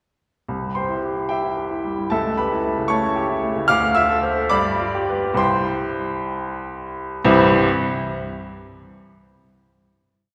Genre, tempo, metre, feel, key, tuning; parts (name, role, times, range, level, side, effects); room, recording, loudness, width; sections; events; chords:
classical, virtuoso piano study; 64-77 BPM (dotted quarters); 6/8; rubato; C major; A4 = 439 Hz
clear baby grand piano; solo; 0.5-7.7 s; C2 to F6; -21 LUFS; equal
wet concert hall reverb, RT60 2.2 s; heard from further back in the room; -21 LUFS; mono
0.5-7.2 A section; 7.2-9.0 final chord
slowing down 2.9-7.2
0.5 C; 2.1 A7/C#; 3.7 Dm7; 4.5 G7; 5.4 C